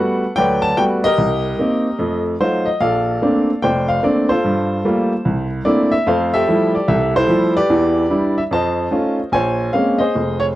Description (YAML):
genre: solo jazz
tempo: 147 BPM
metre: 4/4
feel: swing 64% on 8ths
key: unclear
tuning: A4 = 439 Hz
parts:
  - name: clear baby grand piano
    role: solo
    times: 0.0-10.6 s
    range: F1 to A5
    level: -15 LUFS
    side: equal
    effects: none
room: light reverb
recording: dry, close 1970s-style studio recording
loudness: -15 LUFS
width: side -15 dB against mid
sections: 0.0-9.3 A section; 9.3-10.6 B section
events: none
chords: 0.0 Gmaj9; 1.2 Cm7; 2.0 F7b9; 2.8 Bbmaj9; 4.4 Gm9; 5.2 C13; 6.1 Fmaj9; 7.7 Em7; 8.5 F7b13; 9.3 Bbm9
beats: 0.35 0.76 | 1.17 1.58 1.99 2.39 | 2.80 3.21 3.62 4.02 | 4.43 4.84 5.25 5.65 | 6.06 6.47 6.87 7.28 | 7.69 8.09 8.50 8.91 | 9.32 9.72 10.13 10.54